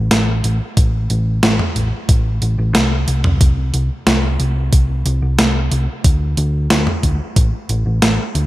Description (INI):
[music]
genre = synthwave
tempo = 91 BPM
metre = 4/4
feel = straight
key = A minor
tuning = A4 = 440 Hz
[part]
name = hollow-body short-scale picked electric bass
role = bass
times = 0.0-8.5 s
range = A1 to D2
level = -17 LUFS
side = equal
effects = none
[part]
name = clean 12-bit digital drum machine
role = drums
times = 0.1-8.5 s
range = hi-hat, snare drum, toms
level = -18 LUFS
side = equal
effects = gated reverb
[part]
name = electronic kick drum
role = drums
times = 0.8-7.5 s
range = none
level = -13 LUFS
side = equal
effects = none
[sound]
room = light reverb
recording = bright 1980s-style digital production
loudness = -14 LUFS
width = side -17 dB against mid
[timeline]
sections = 0.0-8.5 A section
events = none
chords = none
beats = 0.11 | 0.77 1.43 2.09 2.75 | 3.41 4.07 4.73 5.39 | 6.04 6.71 7.36 8.02